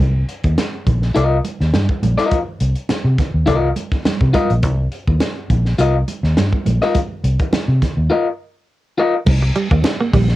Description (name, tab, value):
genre	funk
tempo	104 BPM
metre	4/4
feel	straight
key	C minor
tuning	A4 = 441 Hz
part	vintage muted fingered electric bass	bass	0.0-10.4 s	Bb1 to C3	-16 LUFS	equal	none
part	crisp fusion drum kit	drums	0.0-10.4 s	crash cymbal, hi-hat, kick drum, ride cymbal, snare drum	-20 LUFS	equal	none
part	congas	percussion	0.0-10.3 s	none	-24 LUFS	right 4 dB	none
part	electric guitar at the edge of break-up	accompaniment	1.1-9.1 s	F4 to Eb5	-16 LUFS	left 3 dB	none
part	semi-hollow electric guitar	riff	9.4-10.3 s	G3 to Bb3	-19 LUFS	right 4 dB	lush chorus
room	light reverb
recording	home recording on cassette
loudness	-15 LUFS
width	side -16 dB against mid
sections	0.0-9.3 A section; 9.3-10.4 B section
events	break 8.1-9.3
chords	0.0 Cm7; 9.3 C7(no3)